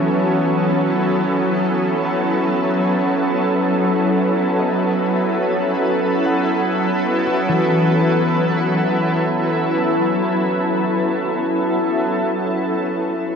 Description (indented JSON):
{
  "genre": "ambient",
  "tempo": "free time",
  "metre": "none",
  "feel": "none",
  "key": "F# dorian",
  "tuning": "A4 = 443 Hz",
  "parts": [
    { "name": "shimmering ambient pad", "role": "sustained chords", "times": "0.0-13.4 s", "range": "F#3 to C#5", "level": "-18 LUFS", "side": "equal", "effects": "chorus, built-in reverb, cassette tape" },
    { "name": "concert harp", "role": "arpeggios", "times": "0.0-12.7 s", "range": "E3 to B5", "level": "-25 LUFS", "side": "left 2 dB", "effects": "cassette tape, tape echo" },
    { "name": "bowed-like drone", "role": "drone", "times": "0.0-12.6 s", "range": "F#3 to C#4", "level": "-22 LUFS", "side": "right 1 dB", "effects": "built-in reverb, cassette tape" }
  ],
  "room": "wet lush hall reverb, RT60 2.7 s",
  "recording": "home recording on cassette",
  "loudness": "-16 LUFS",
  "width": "side -6 dB against mid",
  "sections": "0.0-12.5 A section",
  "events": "none",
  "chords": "0.0 F#m"
}